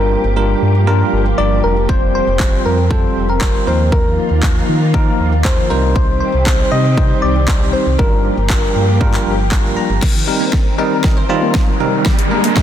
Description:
dance-pop; 118 BPM; 4/4; straight; C minor; A4 = 442 Hz
soft struck synth lead; melody; 0.0-9.7 s; A4 to Eb5; -20 LUFS; left 2 dB; chorus, ping-pong delay
bell-like tine electric piano; accompaniment; 0.0-12.6 s; F3 to Bb5; -19 LUFS; equal; medium stereo tremolo, sidechain pumping
soft string machine; sustained chords; 0.0-12.6 s; Eb3 to Bb4; -22 LUFS; right 1 dB; ensemble chorus, sidechain pumping
sub bass with octave; bass; 0.0-10.0 s; F1 to Eb3; -16 LUFS; equal; sidechain pumping
pop drum kit; drums; 1.9-12.6 s; crash cymbal, handclaps, hi-hat, kick drum, snare drum; -16 LUFS; equal
glassy wavetable pluck; arpeggios; 10.0-12.6 s; G2 to Eb5; -24 LUFS; right 3 dB; chorus, sidechain pumping, ping-pong delay
riser; sound effects; 11.2-12.6 s; -21 LUFS; equal
digital ambience; dense, heavily limited modern master; -12 LUFS; side -10 dB against mid
0.0-10.0 A section; 10.0-12.6 B section
tine electric piano fill 9.3-10.0; build-up 10.0-12.6; drum fill 10.0-12.6; riser 11.2-12.6
0.0 Gm7; 1.9 Fsus2; 3.7 Ebsus2; 5.7 Cm; 8.0 Gm7; 10.0 Cm7; 12.1 Gm
0.36 0.87 1.38 | 1.89 2.40 2.91 3.42 | 3.92 4.43 4.94 5.45 | 5.96 6.47 6.97 7.48 | 7.99 8.50 9.01 9.52 | 10.03 10.53 11.04 11.55 | 12.06 12.57

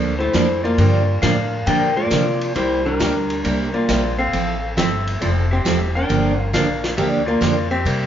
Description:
country, western swing; 136 BPM; 4/4; swing 68% on 8ths; A4 = 438 Hz
picked steel-string acoustic guitar; accompaniment; 0.0-8.1 s; C3 to A4; -22 LUFS; right 3 dB
upright bass; bass; 0.0-8.1 s; E1 to C3; -22 LUFS; equal
clean lap steel guitar; melody; 0.2-8.1 s; D4 to G5; -22 LUFS; left 2 dB
archtop guitar, miked and amplified; second line; 0.2-8.1 s; G3 to D4; -25 LUFS; equal
vintage drum kit; drums; 0.3-8.0 s; hi-hat, ride cymbal, snare drum; -26 LUFS; left 1 dB
moderate large studio reverb, RT60 1.0 s; band playing live in one room, nothing above 7.5 kHz; -16 LUFS; side -10 dB against mid
0.0-8.1 A section
0.0 Bbmaj7; 0.8 Gm7; 2.6 C7; 4.3 Fmaj7; 6.1 Gm7
0.34 | 0.79 1.23 1.67 2.12 | 2.56 3.00 3.44 3.89 | 4.33 4.77 5.21 5.66 | 6.10 6.54 6.98 7.42 | 7.86

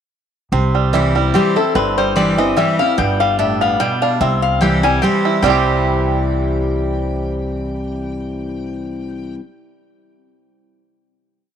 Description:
bluegrass; 147 BPM; 3/4; swing 54% on 8ths; C major; A4 = 440 Hz
picked steel-string acoustic guitar; accompaniment; 0.5-9.4 s; G2 to E4; -19 LUFS; left 1 dB
bluegrass banjo; arpeggios; 0.5-9.4 s; E3 to G4; -20 LUFS; right 9 dB
upright bass; bass; 0.5-9.3 s; G1 to C2; -22 LUFS; equal
lap resonator guitar; melody; 1.3-9.3 s; G4 to Ab5; -19 LUFS; left 8 dB
moderate plate reverb, RT60 3.8 s; 1960s-style stereo with parts hard left and right; -14 LUFS; side -8 dB against mid
0.5-5.4 A section; 5.4-7.9 final chord
0.5 C; 3.0 G; 4.2 C
| 0.52 0.93 1.34 | 1.75 2.16 2.57 | 2.98 3.39 3.80 | 4.21 4.62 5.02 | 5.43 5.84 6.25 | 6.66 7.07 7.48

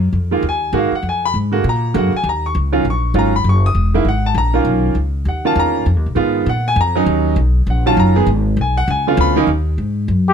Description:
jazz, small-group swing and bop; 199 BPM; 4/4; swing 62% on 8ths; F# major; A4 = 440 Hz
upright bass; bass; 0.0-10.3 s; E1 to A#2; -16 LUFS; left 1 dB
clear grand piano; accompaniment; 0.3-9.5 s; D3 to D#6; -16 LUFS; right 2 dB
trumpet with plunger mute; melody; 10.3 s; G4; -11 LUFS; left 4 dB
little or no reverb; close, detailed microphones; -14 LUFS; side -7 dB against mid
0.0-9.5 A section
0.0 F#maj13; 1.0 Fdim7; 1.7 A#7b13; 2.3 D#m9; 3.5 F#13; 4.7 Bmaj9#11; 5.9 Fm7b5; 6.5 A#5; 7.1 D#m9; 8.3 G#m; 8.9 C#7b9; 9.5 Ebm
0.15 0.45 0.75 | 1.05 1.35 1.65 1.95 | 2.25 2.55 2.85 3.16 | 3.46 3.76 4.06 4.36 | 4.66 4.96 5.27 5.57 | 5.87 6.17 6.47 6.77 | 7.08 7.38 7.68 7.98 | 8.28 8.58 8.88 9.19 | 9.49 9.79 10.09

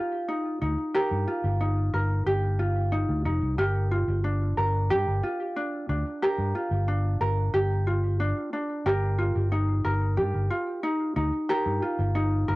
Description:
folktronica; 91 BPM; 4/4; straight; A4 = 440 Hz
ukulele; arpeggios; 0.0-12.6 s; D4 to Bb4; -27 LUFS; equal; cassette tape, tape echo
fingered electric bass; bass; 0.6-12.6 s; F1 to G2; -26 LUFS; equal
moderate booth ambience, RT60 0.2 s; home recording on cassette; -24 LUFS; side -20 dB against mid
0.0-12.6 A section
0.0 Ebsus2; 3.6 Gm7; 8.9 Ebsus2/G
0.29 | 0.94 1.60 2.26 2.92 | 3.58 4.24 4.90 5.56 | 6.22 6.88 7.54 8.20 | 8.86 9.52 10.18 10.84 | 11.49 12.15

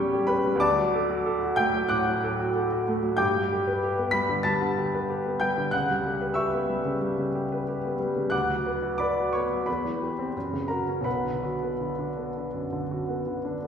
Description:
classical, romantic character piece for solo piano; 81-97 BPM; 4/4; rubato; B minor; A4 = 439 Hz
clear baby grand piano; solo; 0.0-13.7 s; B1 to B6; -24 LUFS; equal
wet recital hall reverb, RT60 1.7 s; recorded in a church or concert hall; -24 LUFS; side -7 dB against mid
0.0-13.7 A section
0.0 C#dim/E; 0.6 D; 3.2 G; 5.7 C#m7b5; 8.3 Bm/D; 9.7 C/E; 10.3 F#; 11.1 Bm
| 0.61 1.26 1.91 2.56 | 3.20 3.83 4.45 5.08 | 5.72 6.36 7.00 7.66 | 8.32 8.99 9.67 10.35 | 11.06 11.79 12.53 13.25

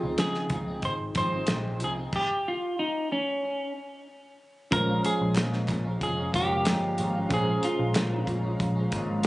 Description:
indie pop, bedroom pop; 93 BPM; 4/4; straight; A4 = 444 Hz
semi-hollow electric guitar; melody; 0.0-8.2 s; Db4 to C5; -29 LUFS; equal; lush chorus, tape echo
electric guitar through a small old amp; accompaniment; 0.0-9.3 s; Bb2 to Ab4; -32 LUFS; left 1 dB; analog chorus, warbly pitch drift
mellow reed electric piano; accompaniment; 0.0-9.3 s; Ab3 to C5; -34 LUFS; right 2 dB; fast tremolo
vintage muted picked electric bass; bass; 0.0-9.3 s; F1 to Db3; -31 LUFS; equal
damped 70s drum kit; drums; 0.2-9.3 s; crash cymbal, hi-hat, kick drum, snare drum; -29 LUFS; equal
hollow soft pad; sustained chords; 4.7-9.3 s; Ab3 to Bb5; -36 LUFS; equal; ensemble chorus
group handclap; percussion; 5.4-8.1 s; -40 LUFS; equal
light reverb, studio ambience; recorded on a phone in the room, club reverb, compression, nothing above 10.4 kHz; -25 LUFS; side -18 dB against mid
0.0-4.7 A section; 4.7-9.3 B section
stop 2.1-4.7
0.0 Dbmaj9; 4.7 Bbm7
0.19 0.83 1.48 | 2.13 2.78 3.42 4.07 | 4.72 5.37 6.01 6.66 | 7.31 7.96 8.60 9.25

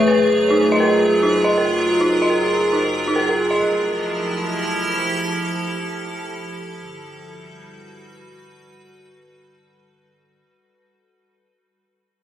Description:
IDM; 140 BPM; 4/4; swing 62% on 16ths; A4 = 440 Hz
icy glass pad; sustained chords; 0.0-10.4 s; F3 to C#5; -19 LUFS; equal; chorus, built-in reverb
warm sub bass; bass; 0.0-10.4 s; F1 to A1; -38 LUFS; equal
dark detuned synth bell; arpeggios; 0.1-3.6 s; D#4 to D#5; -22 LUFS; equal; chorus, ping-pong delay
wet huge ambient reverb, RT60 6.5 s; recorded on a phone in the room, studio reverb, compression; -16 LUFS; side -11 dB against mid
0.0-10.4 A section
fade-out 0.0-10.4
0.2 F#maj9; 3.6 Fmaj9; 6.8 Gmaj9
| 0.16 0.59 1.01 1.44 | 1.87 2.30 2.73 3.16 | 3.59 4.01 4.44 4.87 | 5.30 5.73 6.16 6.59 | 7.01 7.44 7.87 8.30 | 8.73 9.16 9.59 10.02

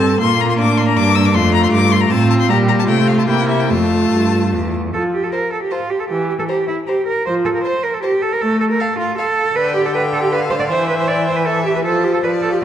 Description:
quick classical-period movement for string quartet; 156 BPM; 3/4; rubato; F major, C major from 9.6 s; A4 = 440 Hz
rich violin; melody; 0.0-12.6 s; E5 to E6; -22 LUFS; left 9 dB
rich violin; second line; 0.0-12.6 s; D4 to G5; -23 LUFS; left 2 dB
clear viola; accompaniment; 0.0-12.6 s; D3 to C4; -19 LUFS; equal
clear cello; bass; 0.0-12.6 s; E2 to D5; -17 LUFS; right 2 dB
wet concert hall reverb, RT60 1.8 s; dark, warm production; -14 LUFS; side -10 dB against mid
0.0-4.9 A section; 4.9-12.6 A section
0.2 Bb; 1.3 F; 2.5 Gm/Bb; 2.9 F/C; 3.3 C7; 3.7 F; 6.1 C7/E (rootless); 7.3 F; 8.4 F/A; 9.6 G7/D; 10.7 C/E; 11.8 F
| 0.22 0.59 0.97 | 1.34 1.72 2.11 | 2.49 2.88 3.28 | 3.69 4.11 4.53 | 4.93 5.32 5.71 | 6.09 6.49 6.88 | 7.26 7.65 8.04 | 8.42 8.80 9.18 | 9.57 9.95 10.32 | 10.70 11.08 11.46 | 11.85 12.23 12.62

